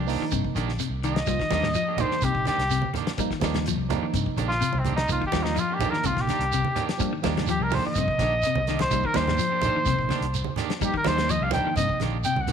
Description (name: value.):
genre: afrobeat.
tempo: 126 BPM.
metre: 4/4.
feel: straight.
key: C minor.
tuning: A4 = 440 Hz.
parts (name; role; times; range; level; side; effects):
clean electric guitar; arpeggios; 0.0-12.5 s; C3 to G3; -30 LUFS; left 10 dB; spring reverb.
clean electric guitar; stabs; 0.0-12.5 s; Eb3 to G4; -34 LUFS; right 11 dB; none.
fingered electric bass; bass; 0.0-12.5 s; Bb1 to G2; -29 LUFS; equal; none.
tine electric piano; accompaniment; 0.1-12.0 s; D3 to F4; -33 LUFS; right 12 dB; overdrive, fast stereo tremolo.
warm soul drum kit; drums; 0.1-12.5 s; hi-hat, kick drum, snare drum; -33 LUFS; left 4 dB; none.
shekere; percussion; 0.1-12.5 s; none; -35 LUFS; right 7 dB; none.
warm trumpet; melody; 1.1-12.5 s; C4 to G5; -26 LUFS; equal; none.
congas; percussion; 1.5-12.5 s; none; -32 LUFS; right 7 dB; none.
room: moderate echo chamber reverb, RT60 2.0 s.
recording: 1960s-style stereo with parts hard left and right.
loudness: -22 LUFS.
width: side -7 dB against mid.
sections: 0.0-12.5 A section.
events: trumpet solo 0.0-12.5; drum fill 8.6-8.9.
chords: 0.0 Cm9.